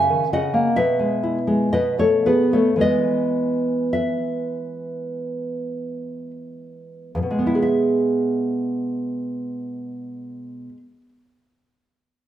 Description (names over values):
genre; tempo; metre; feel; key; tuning
classical; 45-69 BPM; 4/4; rubato; E major; A4 = 441 Hz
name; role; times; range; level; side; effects
nylon-string guitar; accompaniment; 0.0-11.1 s; E2 to G#5; -20 LUFS; equal; none
room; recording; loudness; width
moderate recital hall reverb, RT60 1.4 s; none; -19 LUFS; side -11 dB against mid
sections
0.0-7.6 A section; 7.6-12.3 B section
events
slowing down 0.0-7.6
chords
0.0 F#7; 0.8 E/B; 1.7 B13; 2.8 E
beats
0.77 1.72 | 2.78 3.92 5.11 6.34 | 7.62 8.85 10.08